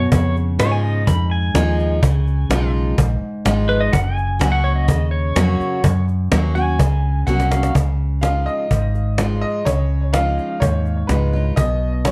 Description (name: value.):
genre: honky-tonk and classic country.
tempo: 126 BPM.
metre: 4/4.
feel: straight.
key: unclear.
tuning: A4 = 439 Hz.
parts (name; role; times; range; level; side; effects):
pedal steel guitar; second line; 0.0-7.7 s; B4 to B5; -27 LUFS; equal; none.
picked steel-string acoustic guitar; accompaniment; 0.0-12.1 s; F#2 to F#4; -26 LUFS; equal; none.
vintage muted fingered electric bass; bass; 0.0-12.1 s; F#1 to G#2; -21 LUFS; equal; none.
cajon; drums; 0.1-12.1 s; none; -22 LUFS; equal; none.
bright upright piano; melody; 8.2-12.1 s; B4 to E#5; -26 LUFS; equal; plate reverb, tape echo.
room: light reverb.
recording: dark, warm production.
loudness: -18 LUFS.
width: mono.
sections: 0.0-7.8 A section; 7.8-12.1 B section.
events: pedal steel guitar solo 0.0-7.8; drum fill 7.3-7.8.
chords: 0.1 C#add9; 3.9 F#; 7.8 C#add9; 11.6 B.